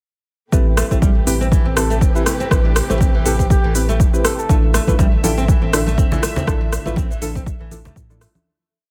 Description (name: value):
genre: afro house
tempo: 121 BPM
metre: 4/4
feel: swing 56% on 16ths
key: A minor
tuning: A4 = 442 Hz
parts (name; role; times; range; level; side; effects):
- dark studio string section; sustained chords; 0.5-8.4 s; C3 to E5; -32 LUFS; equal; sidechain pumping
- nylon-string guitar; arpeggios; 0.5-8.3 s; E3 to A4; -28 LUFS; equal; sidechain pumping, delay
- deep mellow chord stab; stabs; 0.5-8.4 s; C4 to C5; -27 LUFS; equal; chorus, sidechain pumping, delay
- warm sub bass; bass; 0.5-8.3 s; E1 to A2; -24 LUFS; equal; sidechain pumping
- afro-pop drum kit; drums; 0.5-8.4 s; hi-hat, rim click, shaker; -25 LUFS; equal; none
- electronic kick drum; drums; 0.5-8.1 s; none; -19 LUFS; equal; none
- trumpet with bucket mute; melody; 1.8-4.5 s; E4 to A4; -30 LUFS; equal; delay
- congas; percussion; 4.9-8.4 s; none; -27 LUFS; equal; none
room: small room ambience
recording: none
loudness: -16 LUFS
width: mono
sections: 0.5-8.5 drop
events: drop 0.5-8.5; fade-out 5.8-8.5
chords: 0.5 Am9; 4.5 Dmadd9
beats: | 0.53 1.02 1.52 2.01 | 2.51 3.01 3.50 4.00 | 4.49 4.99 5.49 5.98 | 6.48 6.97 7.47 7.96